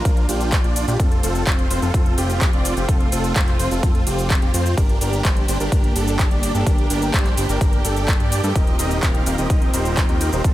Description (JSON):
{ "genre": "EDM, festival progressive house", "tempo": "127 BPM", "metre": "4/4", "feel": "straight", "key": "unclear", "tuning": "A4 = 440 Hz", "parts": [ { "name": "dark studio string section", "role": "sustained chords", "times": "0.0-10.5 s", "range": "Eb3 to G4", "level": "-29 LUFS", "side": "right 2 dB", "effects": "sidechain pumping" }, { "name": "dense compressed supersaw", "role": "riff", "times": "0.0-10.5 s", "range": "C4 to G5", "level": "-24 LUFS", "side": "equal", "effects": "sidechain pumping, dub echo" }, { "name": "fat analog bass", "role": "bass", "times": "0.0-10.5 s", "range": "Eb1 to G2", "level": "-23 LUFS", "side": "equal", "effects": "sidechain pumping" }, { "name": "big-room dance drum kit", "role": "drums", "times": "0.1-10.5 s", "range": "cabasa, handclaps, hi-hat, ride cymbal", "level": "-26 LUFS", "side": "equal", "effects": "none" }, { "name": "electronic kick drum", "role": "drums", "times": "0.1-10.5 s", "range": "none", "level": "-18 LUFS", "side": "equal", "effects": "none" } ], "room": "little or no reverb", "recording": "none", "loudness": "-16 LUFS", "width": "side -15 dB against mid", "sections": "0.0-10.5 A section", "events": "none", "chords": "0.0 Bb; 1.0 F; 4.8 Gm; 8.6 Eb6" }